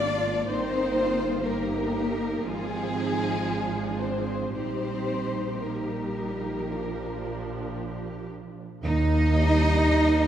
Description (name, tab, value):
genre	classical, slow romantic movement for string orchestra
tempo	55-62 BPM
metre	4/4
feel	rubato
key	Eb major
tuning	A4 = 440 Hz
part	bright studio violin section	melody	0.0-10.3 s	Ab3 to Bb4	-37 LUFS	left 4 dB	none
part	rich studio violin section	second line	0.0-10.3 s	Ab4 to Eb5	-31 LUFS	left 2 dB	none
part	warm studio viola section	accompaniment	0.0-10.3 s	F3 to Eb4	-31 LUFS	right 1 dB	none
part	clear studio double bass section	bass	0.0-10.3 s	G1 to Eb2	-29 LUFS	right 1 dB	none
part	rich studio cello section	bass	0.0-10.3 s	Eb4 to Ab4	-30 LUFS	right 1 dB	none
room	wet scoring stage reverb, RT60 2.0 s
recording	heard from further back in the room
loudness	-24 LUFS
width	side -10 dB against mid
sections	0.0-8.8 A section; 8.8-10.3 B section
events	none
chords	0.5 Eb/G; 2.5 Fm/Ab; 4.5 Eb/Bb; 6.7 Bb; 8.8 Eb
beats	| 0.47 1.46 2.45 3.47 | 4.53 5.62 6.71 7.78 | 8.83 9.83